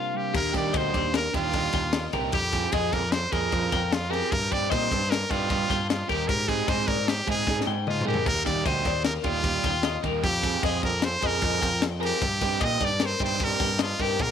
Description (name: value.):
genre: math rock and midwest emo.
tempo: 152 BPM.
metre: 5/4.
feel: straight.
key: C minor.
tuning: A4 = 440 Hz.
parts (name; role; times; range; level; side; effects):
brilliant trumpet; melody; 0.0-14.3 s; F4 to Eb5; -27 LUFS; right 1 dB; none.
twelve-string electric guitar; accompaniment; 0.0-2.3 s; C3 to Bb4; -35 LUFS; right 16 dB; spring reverb.
twelve-string electric guitar; arpeggios; 0.0-14.3 s; G4 to G5; -32 LUFS; left 14 dB; lush chorus.
growling picked electric bass; bass; 0.3-14.3 s; Bb1 to Bb2; -31 LUFS; right 1 dB; overdrive.
crisp fusion drum kit; drums; 0.3-14.3 s; crash cymbal, kick drum, ride cymbal, snare drum, toms; -29 LUFS; left 3 dB; none.
overdriven electric guitar; riff; 0.5-14.2 s; F3 to Ab4; -31 LUFS; right 16 dB; none.
room: studio reverb.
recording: 1960s-style stereo with parts hard left and right.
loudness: -23 LUFS.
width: side -8 dB against mid.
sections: 0.3-14.3 A section.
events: break 0.0-0.3; drum fill 7.5-8.3.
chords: 0.3 Ebmaj7; 2.3 Fm9; 4.3 Cm11/G; 6.3 Abmaj7; 8.3 Ebmaj7; 10.2 Fm9; 12.2 Cm9/G.